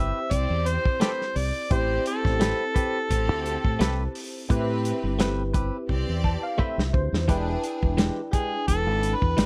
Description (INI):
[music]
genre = straight-eighth soul blues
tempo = 86 BPM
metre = 4/4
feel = swing 55% on 16ths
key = A minor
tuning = A4 = 439 Hz
[part]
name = overdriven harmonica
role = melody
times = 0.0-4.1, 8.3-9.5 s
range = G4 to E5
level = -30 LUFS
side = equal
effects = plate reverb
[part]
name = barky tine electric piano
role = accompaniment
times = 0.0-9.5 s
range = C4 to A5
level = -34 LUFS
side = equal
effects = analog chorus, plate reverb
[part]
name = direct-recorded clean electric guitar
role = stabs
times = 0.0-9.5 s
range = E3 to B4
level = -34 LUFS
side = equal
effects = plate reverb
[part]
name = fingered electric bass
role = bass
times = 0.0-9.5 s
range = E1 to A2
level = -29 LUFS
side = equal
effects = none
[part]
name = bright studio string section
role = sustained chords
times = 0.3-9.4 s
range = C4 to D5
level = -40 LUFS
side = equal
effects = plate reverb
[part]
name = warm soul drum kit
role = drums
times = 0.3-9.5 s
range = hi-hat, kick drum, snare drum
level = -28 LUFS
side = equal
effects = none
[sound]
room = light reverb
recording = none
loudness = -25 LUFS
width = mono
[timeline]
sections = 0.0-9.5 A section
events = drum fill 5.9-7.3; tine electric piano fill 5.9-7.3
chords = 0.0 Am9; 7.3 E7#9